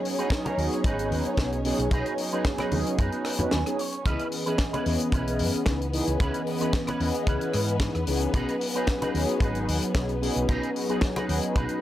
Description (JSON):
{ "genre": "nu-disco, nu disco", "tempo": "112 BPM", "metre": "4/4", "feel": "straight", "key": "unclear", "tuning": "A4 = 439 Hz", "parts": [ { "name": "mellow synth brass", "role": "accompaniment", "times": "0.0-11.8 s", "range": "E3 to D#5", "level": "-28 LUFS", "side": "equal", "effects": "chorus, tape echo" }, { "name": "dark studio string section", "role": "sustained chords", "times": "0.0-11.8 s", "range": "B3 to C#5", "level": "-34 LUFS", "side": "left 2 dB", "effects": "sidechain pumping" }, { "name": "tight funk drum kit", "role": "drums", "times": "0.1-11.8 s", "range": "hi-hat, rim click, snare drum", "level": "-33 LUFS", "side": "left 2 dB", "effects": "none" }, { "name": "electric guitar with an envelope filter", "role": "riff", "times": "0.2-11.8 s", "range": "C#4 to G#5", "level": "-35 LUFS", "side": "right 2 dB", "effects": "ensemble chorus, tape echo" }, { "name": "kick drum", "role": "drums", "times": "0.3-11.7 s", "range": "none", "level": "-25 LUFS", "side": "equal", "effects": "none" }, { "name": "congas", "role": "percussion", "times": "0.5-11.3 s", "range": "none", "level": "-33 LUFS", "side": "left 1 dB", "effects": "none" }, { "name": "hollow-body short-scale fingered electric bass", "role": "bass", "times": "0.6-11.7 s", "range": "G#1 to G#2", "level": "-30 LUFS", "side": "equal", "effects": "none" } ], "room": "studio reverb", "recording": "dry, gritty hardware recording", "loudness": "-24 LUFS", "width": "side -13 dB against mid", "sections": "0.0-11.8 A section", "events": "clean electric guitar fill 3.3-4.1; kick drops out 3.5-4.1", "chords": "0.0 B6; 4.1 C#m7; 8.3 B6" }